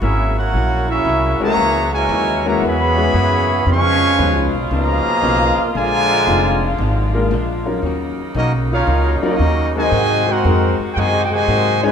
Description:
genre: jazz, big band swing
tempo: 115 BPM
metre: 4/4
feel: swing 67% on 8ths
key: unclear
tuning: A4 = 440 Hz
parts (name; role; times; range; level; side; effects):
- clear trumpet section; melody; 0.0-11.9 s; Db4 to Db6; -18 LUFS; equal; none
- warm trombone section; second line; 0.0-11.9 s; Cb3 to Gb4; -21 LUFS; right 2 dB; none
- hollow-body jazz guitar; accompaniment; 0.0-11.9 s; Ab2 to Ab4; -27 LUFS; left 5 dB; none
- warm saxophone section; sustained chords; 0.0-11.9 s; Cb3 to Gb4; -26 LUFS; left 1 dB; none
- upright bass; bass; 0.0-11.9 s; F1 to Ab2; -20 LUFS; equal; none
- warm concert grand piano; accompaniment; 1.4-11.9 s; Gb3 to Db5; -22 LUFS; left 4 dB; none
room: moderate large studio reverb, RT60 1.4 s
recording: minimal, uncompressed stereo recording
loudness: -14 LUFS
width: side -7 dB against mid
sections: 0.0-11.9 A section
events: none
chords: 0.0 Gb9; 3.7 Db9; 5.7 Bb7; 7.8 Ebm7; 9.9 Ab9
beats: 0.02 0.54 1.06 | 1.58 2.10 2.62 3.14 | 3.66 4.18 4.71 5.23 | 5.75 6.27 6.79 7.31 | 7.83 8.35 8.87 9.39 | 9.92 10.44 10.96 11.48

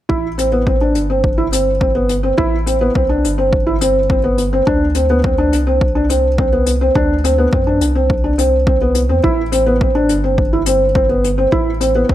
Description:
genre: piano and strings electronica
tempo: 105 BPM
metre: 4/4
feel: straight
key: A dorian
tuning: A4 = 441 Hz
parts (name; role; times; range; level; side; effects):
- felt-muted upright piano; riff; 0.1-12.1 s; B3 to E4; -14 LUFS; equal; ping-pong delay
- round analog bass; bass; 0.1-12.1 s; G1 to F#2; -19 LUFS; equal; sidechain pumping
- electronic kick drum; drums; 0.1-12.1 s; none; -19 LUFS; equal; overdrive
- hi-hat; drums; 0.4-11.9 s; none; -24 LUFS; left 6 dB; none
room: moderate recital hall reverb, RT60 1.5 s, small room ambience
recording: none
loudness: -12 LUFS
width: side -12 dB against mid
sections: 0.1-12.1 A section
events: none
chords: 0.1 Am; 4.7 N.C.; 9.2 Am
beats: | 0.10 0.67 1.24 1.81 | 2.38 2.95 3.52 4.10 | 4.67 5.24 5.81 6.38 | 6.95 7.52 8.10 8.67 | 9.24 9.81 10.38 10.95 | 11.52 12.10

